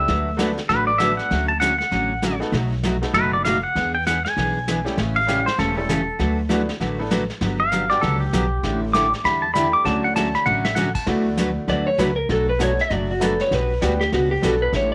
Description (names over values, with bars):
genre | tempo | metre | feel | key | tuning
country, western swing | 197 BPM | 4/4 | swing 62% on 8ths | D major | A4 = 440 Hz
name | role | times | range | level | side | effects
pedal steel guitar | second line | 0.0-11.1 s | G4 to D6 | -23 LUFS | equal | none
bright upright piano | accompaniment | 0.0-14.7 s | G3 to B4 | -31 LUFS | equal | none
upright bass | bass | 0.0-14.9 s | E1 to E2 | -28 LUFS | equal | none
picked steel-string acoustic guitar | accompaniment | 0.1-14.9 s | B2 to B4 | -27 LUFS | equal | none
vintage brush drum kit | drums | 0.1-14.9 s | brushed snare drum, crash cymbal, hi-hat, kick drum, snare drum, toms | -32 LUFS | equal | none
clean lap steel guitar | melody | 11.7-14.9 s | F#4 to E5 | -24 LUFS | equal | none
room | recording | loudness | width
light reverb, small room ambience | none | -21 LUFS | mono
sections
0.0-11.1 A section; 11.1-14.9 A section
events
pedal steel guitar solo 0.0-11.1; drum fill 10.5-10.8; electric slide guitar solo 11.1-14.9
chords
0.1 D6; 1.3 Dmaj7; 2.5 B7; 3.8 E7; 5.0 A7; 6.2 D69; 7.4 Gmaj7; 8.6 A7sus4; 9.9 Dmaj9; 11.1 D69; 12.3 Bm7; 13.5 Gmaj7/B